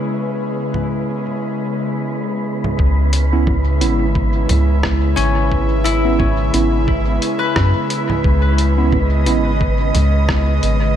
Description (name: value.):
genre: ambient dub.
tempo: 88 BPM.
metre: 4/4.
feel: swing 57% on 16ths.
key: C# minor.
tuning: A4 = 442 Hz.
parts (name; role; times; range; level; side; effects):
airy breathy pad; sustained chords; 0.0-11.0 s; C#3 to D#5; -21 LUFS; equal; chorus.
concert harp; arpeggios; 0.0-0.4, 5.2-9.8 s; C#4 to B4; -25 LUFS; left 4 dB; dub echo.
wind-like tuned noise texture; texture; 0.0-11.0 s; B3 to B4; -26 LUFS; right 1 dB; built-in reverb.
lo-fi sampler-style drum kit; drums; 0.7-10.8 s; congas, hi-hat, rim click; -24 LUFS; right 1 dB; dub echo.
soft dub sub bass; bass; 2.8-11.0 s; G#1 to F#2; -16 LUFS; equal; tube saturation.
electronic kick drum; drums; 2.8-10.4 s; none; -20 LUFS; equal; none.
tine electric piano; stabs; 3.3-9.5 s; B3 to E4; -23 LUFS; right 4 dB; medium stereo tremolo, dub echo.
room: light reverb.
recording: none.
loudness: -14 LUFS.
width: side -10 dB against mid.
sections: 0.0-2.8 A section; 2.8-11.0 B section.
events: filter sweep on drum 0.0-2.8.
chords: 0.0 C#m7.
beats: | 0.06 0.74 1.42 2.11 | 2.79 3.47 4.15 4.83 | 5.51 6.20 6.88 7.56 | 8.24 8.92 9.61 10.29.